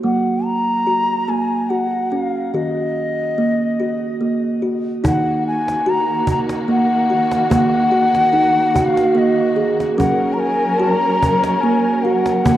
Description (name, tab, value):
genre	world meditative, meditative tuned percussion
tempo	73 BPM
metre	3/4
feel	straight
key	Eb minor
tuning	A4 = 442 Hz
part	bansuri	melody	0.0-12.6 s	Eb5 to Bb5	-19 LUFS	left 2 dB	cassette tape, shimmer reverb, analog delay
part	kalimba	arpeggios	0.0-12.6 s	Eb3 to Ab4	-18 LUFS	right 2 dB	shimmer reverb
part	dark symphonic string section	sustained chords	5.0-12.6 s	Eb3 to Bb4	-23 LUFS	left 1 dB	shimmer reverb
part	cajon	percussion	5.0-12.6 s	none	-23 LUFS	equal	none
room	wet spring reverb, RT60 2.4 s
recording	home recording on cassette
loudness	-15 LUFS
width	side -12 dB against mid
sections	0.0-5.0 A section; 5.0-12.6 B section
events	none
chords	0.0 Gb; 2.5 Ebm; 10.0 Gb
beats	| 0.05 0.88 1.71 | 2.55 3.38 4.21 | 5.04 5.86 6.69 | 7.52 8.34 9.16 | 9.99 10.81 11.63 | 12.45